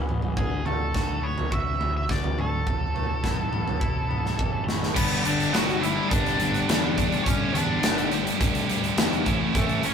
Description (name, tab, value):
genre	quiet-loud alternative rock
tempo	104 BPM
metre	4/4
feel	straight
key	unclear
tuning	A4 = 440 Hz
part	twangy electric guitar	arpeggios	0.0-5.0 s	E2 to F#4	-37 LUFS	right 1 dB	none
part	fuzz picked electric bass	bass	0.1-9.9 s	E1 to E2	-32 LUFS	equal	overdrive
part	big rock drum kit	drums	0.1-9.9 s	crash cymbal, hi-hat, kick drum, snare drum, toms	-25 LUFS	equal	none
part	octave-fuzz lead guitar	melody	0.4-9.9 s	A3 to F#5	-29 LUFS	equal	distortion
part	high-gain distorted guitar	riff	4.9-9.9 s	A2 to G4	-27 LUFS	right 6 dB	distortion
part	thick fuzz guitar	riff	5.0-9.9 s	G2 to A3	-29 LUFS	left 5 dB	distortion
room	light reverb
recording	rough rehearsal-room recording, warm saturation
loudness	-22 LUFS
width	side -7 dB against mid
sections	0.0-5.0 A section; 5.0-9.9 B section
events	drum fill 3.8-5.0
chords	0.4 D6; 2.7 Esus4; 5.0 Gsus2; 9.3 A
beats	| 0.36 0.93 1.51 2.09 | 2.66 3.24 3.81 4.39 | 4.96 5.54 6.11 6.68 | 7.26 7.83 8.40 8.97 | 9.54